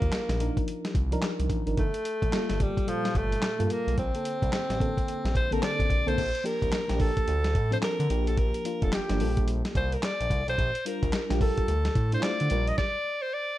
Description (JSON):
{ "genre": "R&B, new jack swing", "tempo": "109 BPM", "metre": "4/4", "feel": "swing 62% on 16ths", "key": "unclear", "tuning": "A4 = 440 Hz", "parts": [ { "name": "clear alto saxophone", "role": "melody", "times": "0.0-13.6 s", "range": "F3 to Eb5", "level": "-30 LUFS", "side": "equal", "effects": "none" }, { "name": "mellow FM electric piano", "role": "accompaniment", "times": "0.0-12.8 s", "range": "Bb2 to C5", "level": "-32 LUFS", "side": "left 1 dB", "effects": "chorus, tremolo" }, { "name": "smooth synth bass", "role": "bass", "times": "0.0-12.7 s", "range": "F1 to D3", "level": "-29 LUFS", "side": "equal", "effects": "none" }, { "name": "dusty soul sampler-style drum kit", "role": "drums", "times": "0.0-12.9 s", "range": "crash cymbal, handclaps, hi-hat, kick drum, snare drum", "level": "-29 LUFS", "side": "equal", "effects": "none" } ], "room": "little or no reverb", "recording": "none", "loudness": "-25 LUFS", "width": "side -14 dB against mid", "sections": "0.0-6.2 A section; 6.2-13.6 B section", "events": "stop 12.8-13.6", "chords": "0.0 Cm11; 1.8 Gm9; 4.0 Bbmaj9; 6.2 Bb6; 7.3 Dm7; 8.1 Bb6; 9.2 Gm9/Bb; 10.6 Bb6; 11.7 Dm7; 12.5 Bb6" }